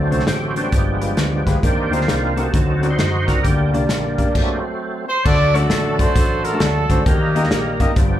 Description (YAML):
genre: uptempo gospel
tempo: 133 BPM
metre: 4/4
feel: swing 64% on 8ths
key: G minor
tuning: A4 = 438 Hz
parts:
  - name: clear concert grand piano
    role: accompaniment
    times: 0.0-8.2 s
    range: G2 to Eb5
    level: -24 LUFS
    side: left 4 dB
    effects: plate reverb
  - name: overdriven tonewheel organ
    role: sustained chords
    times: 0.0-8.2 s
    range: Eb3 to C5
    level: -22 LUFS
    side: right 2 dB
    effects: chorus vibrato, slow rotary speaker, plate reverb
  - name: hollow-body short-scale fingered electric bass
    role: bass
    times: 0.0-8.2 s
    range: G1 to F#2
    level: -21 LUFS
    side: equal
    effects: none
  - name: natural country drum kit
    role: drums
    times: 0.1-8.1 s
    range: crash cymbal, hi-hat, kick drum, snare drum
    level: -20 LUFS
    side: equal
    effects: none
  - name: warm horn section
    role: melody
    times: 5.1-7.9 s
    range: Bb3 to D5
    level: -20 LUFS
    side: right 1 dB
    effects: plate reverb, slapback echo
room: light reverb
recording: live gig heard through the venue's PA, club reverb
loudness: -15 LUFS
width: side -12 dB against mid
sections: 0.0-5.3 A section; 5.3-8.2 B section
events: tonewheel organ solo 0.0-5.3; stop 4.3-5.3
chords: 0.0 D7; 0.7 G7b9; 1.6 Cm7; 2.5 D7b9; 3.4 Gm; 4.3 F#dim; 5.3 D; 7.1 Eb